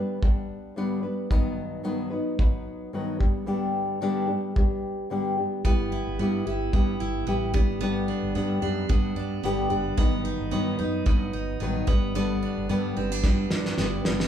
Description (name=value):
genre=acoustic pop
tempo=111 BPM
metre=4/4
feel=swing 55% on 16ths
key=G major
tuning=A4 = 440 Hz
part: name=nylon-string guitar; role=accompaniment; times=0.0-14.3 s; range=G2 to B4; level=-27 LUFS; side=left 1 dB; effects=none
part: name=cloth-damped thuddy drum kit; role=drums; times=0.2-14.3 s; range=kick drum, snare drum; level=-23 LUFS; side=equal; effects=none
part: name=picked steel-string acoustic guitar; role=arpeggios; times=5.6-14.3 s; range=B3 to E4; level=-32 LUFS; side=right 5 dB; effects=none
part: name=fretless electric bass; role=bass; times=5.6-14.3 s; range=F#1 to G2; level=-31 LUFS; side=equal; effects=none
room=moderate large studio reverb, RT60 1.2 s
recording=band playing live in one room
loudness=-24 LUFS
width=side -9 dB against mid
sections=0.0-14.3 A section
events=drum fill 13.2-14.3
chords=0.0 G; 1.3 B/G; 3.2 G; 5.6 Em/G; 7.5 G; 10.0 B/G; 11.9 G